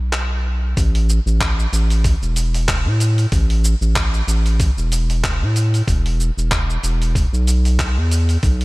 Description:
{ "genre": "sunset chillout", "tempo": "94 BPM", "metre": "4/4", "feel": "swing 56% on 16ths", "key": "unclear", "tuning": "A4 = 440 Hz", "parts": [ { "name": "round analog bass", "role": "bass", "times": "0.0-8.6 s", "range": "E1 to A2", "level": "-16 LUFS", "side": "equal", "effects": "none" }, { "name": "dusty soul sampler-style drum kit", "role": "drums", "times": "0.1-8.6 s", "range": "handclaps, hi-hat, shaker", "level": "-24 LUFS", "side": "equal", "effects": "none" }, { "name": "electronic kick drum", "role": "drums", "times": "0.8-8.6 s", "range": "none", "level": "-20 LUFS", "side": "equal", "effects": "none" } ], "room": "digital ambience", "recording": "none", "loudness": "-15 LUFS", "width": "side -22 dB against mid", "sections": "0.8-8.6 A section", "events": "none", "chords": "none", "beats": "0.13 | 0.77 1.41 2.05 2.69 | 3.32 3.96 4.60 5.24 | 5.88 6.51 7.15 7.79 | 8.43" }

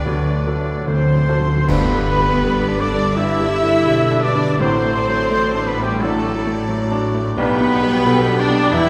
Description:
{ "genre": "classical, romantic movement for piano and orchestra", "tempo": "72-90 BPM", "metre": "4/4", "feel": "rubato", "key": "G major", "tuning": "A4 = 440 Hz", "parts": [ { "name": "clear baby grand piano", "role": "melody", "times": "0.0-8.9 s", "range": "B1 to D5", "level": "-22 LUFS", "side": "equal", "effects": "none" }, { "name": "rich chamber violin section", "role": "melody", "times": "0.0-8.9 s", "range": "B4 to G5", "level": "-35 LUFS", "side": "equal", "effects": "none" }, { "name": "concert flute", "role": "second line", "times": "0.0-8.9 s", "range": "B4 to E6", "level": "-30 LUFS", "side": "equal", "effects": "none" }, { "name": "warm clarinet", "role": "second line", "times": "0.0-8.9 s", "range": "A3 to C5", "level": "-30 LUFS", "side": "equal", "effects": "none" }, { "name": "warm oboe", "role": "second line", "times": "0.0-8.9 s", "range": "D4 to E5", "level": "-30 LUFS", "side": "equal", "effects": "none" }, { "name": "warm studio violin section", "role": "second line", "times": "0.0-8.9 s", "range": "G4 to E5", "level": "-29 LUFS", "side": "equal", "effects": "none" }, { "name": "dark bassoon", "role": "accompaniment", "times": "0.0-1.3 s", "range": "F#3", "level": "-36 LUFS", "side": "equal", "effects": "none" }, { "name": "warm French horn section", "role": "sustained chords", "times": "0.0-8.9 s", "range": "none", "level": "barely audible", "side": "none", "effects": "none" }, { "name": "rich chamber cello section", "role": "bass", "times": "0.0-8.9 s", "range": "E2 to D3", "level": "-28 LUFS", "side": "equal", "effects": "none" }, { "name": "rich chamber viola section", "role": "accompaniment", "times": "0.1-8.9 s", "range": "G3 to F#4", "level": "-25 LUFS", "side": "equal", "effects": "none" }, { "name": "warm chamber double bass section", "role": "bass", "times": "0.1-8.9 s", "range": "E1 to D2", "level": "-29 LUFS", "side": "equal", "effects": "none" }, { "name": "timpani", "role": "percussion", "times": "0.1-2.8 s", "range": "G2 to D3", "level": "-31 LUFS", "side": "equal", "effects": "none" }, { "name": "warm trumpet", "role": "stabs", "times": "0.9-8.9 s", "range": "G4 to E5", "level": "-29 LUFS", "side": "equal", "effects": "none" }, { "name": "warm trombone section", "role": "sustained chords", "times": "1.7-8.9 s", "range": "B2 to G3", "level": "-35 LUFS", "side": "equal", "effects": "none" }, { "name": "clash cymbals and concert bass drum", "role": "percussion", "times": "1.7-3.1 s", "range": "none", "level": "-31 LUFS", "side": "equal", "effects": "none" } ], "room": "wet church reverb, RT60 2.7 s", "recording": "recorded in a church or concert hall", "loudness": "-17 LUFS", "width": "mono", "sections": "0.0-1.7 A section; 1.7-8.9 B section", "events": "timpani fill 0.1-1.7; band accent 1.7-2.4", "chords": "0.1 D; 1.7 G; 4.6 D7/A; 7.4 G/B", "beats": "0.07 0.88 | 1.69 2.44 3.16 3.87 | 4.60 5.32 6.00 6.68 | 7.37 8.05 8.73" }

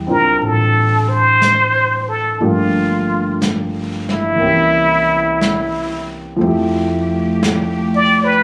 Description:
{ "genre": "jazz ballad", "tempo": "60 BPM", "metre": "4/4", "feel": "swing 66% on 8ths", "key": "unclear", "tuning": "A4 = 439 Hz", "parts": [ { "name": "warm concert grand piano", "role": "accompaniment", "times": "0.0-8.4 s", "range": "E3 to C5", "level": "-22 LUFS", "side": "equal", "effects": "none" }, { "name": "upright bass", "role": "bass", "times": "0.0-8.4 s", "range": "G1 to F2", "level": "-24 LUFS", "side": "equal", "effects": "none" }, { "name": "trumpet with plunger mute", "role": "melody", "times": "0.1-8.4 s", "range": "E4 to D5", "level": "-16 LUFS", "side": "equal", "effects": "none" }, { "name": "vintage brush drum kit", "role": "drums", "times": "0.4-8.4 s", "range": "brushed snare drum, hi-hat, snare drum", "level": "-27 LUFS", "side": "equal", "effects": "none" }, { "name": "clear studio cello section", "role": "sustained chords", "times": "6.4-8.4 s", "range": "A3 to G4", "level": "-23 LUFS", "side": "equal", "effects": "none" } ], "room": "light reverb", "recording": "recorded on a phone in the room, club reverb", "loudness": "-16 LUFS", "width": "mono", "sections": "0.0-6.4 A section; 6.4-8.4 B section", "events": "muted trumpet solo 6.4-8.4", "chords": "0.0 Dm11; 2.4 Gm7; 4.4 C7b9; 6.4 Fmaj9", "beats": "0.41 1.41 | 2.40 3.40 4.40 5.41 | 6.42 7.42 8.42" }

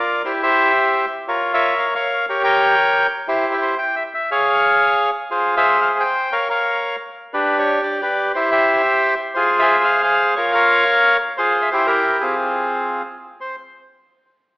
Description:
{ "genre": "tango", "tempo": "178 BPM", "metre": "3/4", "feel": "rubato", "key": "F harmonic minor", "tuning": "A4 = 440 Hz", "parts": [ { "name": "bandoneon", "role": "solo", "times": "0.0-13.6 s", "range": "C4 to G5", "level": "-15 LUFS", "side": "equal", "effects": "none" } ], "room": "wet recital hall reverb, RT60 1.5 s", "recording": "recorded in a church or concert hall, AM radio sound", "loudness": "-15 LUFS", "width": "side -20 dB against mid", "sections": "0.0-13.4 A section; 13.4-14.4 B section", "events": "none", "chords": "0.2 C; 1.3 Bbm; 2.3 Gdim; 3.3 Em; 4.3 Db; 5.3 Fm; 6.3 Bbm; 7.3 G; 8.3 C; 9.3 Fm; 10.4 Bbm; 11.4 Fm; 11.7 C; 12.4 Fm; 13.4 N.C.", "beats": "| 0.24 0.58 0.92 | 1.25 1.59 1.93 | 2.27 2.60 2.94 | 3.28 3.61 3.95 | 4.28 4.62 4.96 | 5.30 5.64 5.97 | 6.31 6.65 6.99 | 7.32 7.65 7.99 | 8.33 8.67 9.01 | 9.35 9.68 10.02 | 10.36 10.70 11.04 | 11.37 11.71 12.04 | 12.38 12.72 13.06 | 13.40" }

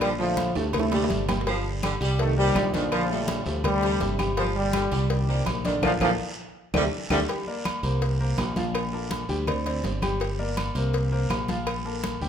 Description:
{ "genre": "latin, salsa", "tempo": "165 BPM", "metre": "4/4", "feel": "straight", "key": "G minor", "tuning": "A4 = 442 Hz", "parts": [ { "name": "warm trombone section", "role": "melody", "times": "0.0-7.2 s", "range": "F2 to A3", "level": "-27 LUFS", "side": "equal", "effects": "none" }, { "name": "clear saxophone section", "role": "second line", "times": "0.0-7.2 s", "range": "D3 to Bb3", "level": "-32 LUFS", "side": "right 1 dB", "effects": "none" }, { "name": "clear grand piano", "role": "accompaniment", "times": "0.0-12.3 s", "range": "D3 to G5", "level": "-31 LUFS", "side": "left 1 dB", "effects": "none" }, { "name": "modern bright fingered electric bass", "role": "bass", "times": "0.0-12.3 s", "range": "G1 to D2", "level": "-28 LUFS", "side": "equal", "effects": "none" }, { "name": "agogo bells and timbales", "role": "percussion", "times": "0.0-12.2 s", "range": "none", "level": "-33 LUFS", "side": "right 4 dB", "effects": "none" }, { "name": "claves", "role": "percussion", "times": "0.0-11.9 s", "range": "none", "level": "-40 LUFS", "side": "left 6 dB", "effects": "none" }, { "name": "congas", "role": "percussion", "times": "0.0-12.3 s", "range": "none", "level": "-34 LUFS", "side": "left 1 dB", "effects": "none" }, { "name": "cowbell", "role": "percussion", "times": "0.0-12.2 s", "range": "none", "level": "-34 LUFS", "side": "left 3 dB", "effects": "none" }, { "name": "guiro", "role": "percussion", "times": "0.0-12.3 s", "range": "none", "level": "-40 LUFS", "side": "right 3 dB", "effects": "none" } ], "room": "moderate large studio reverb, RT60 1.2 s", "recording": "minimal, uncompressed stereo recording", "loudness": "-23 LUFS", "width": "side -8 dB against mid", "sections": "0.0-7.3 A section; 7.3-12.3 B section", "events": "drum fill 0.6-1.5, 6.6-7.3; band accent 5.8-7.3", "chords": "0.0 Bbmaj7; 0.7 D7sus4; 1.5 Gm7; 2.2 Cm7; 2.9 Bbmaj7; 3.6 D7sus4; 4.4 Gm7; 5.1 Cm7; 5.8 Bbmaj7; 6.6 D7sus4; 7.3 Gm; 8.0 Bbsus2; 8.7 Bbmaj7; 9.5 D7sus4; 10.2 Gm; 10.9 Bbsus2; 11.7 Bbmaj7(no3)", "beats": "| 0.01 0.38 0.74 1.10 | 1.47 1.83 2.19 2.56 | 2.92 3.28 3.65 4.01 | 4.37 4.74 5.10 5.46 | 5.83 6.19 6.56 6.92 | 7.29 7.65 8.02 8.38 | 8.75 9.11 9.48 9.84 | 10.21 10.57 10.94 11.30 | 11.67 12.03" }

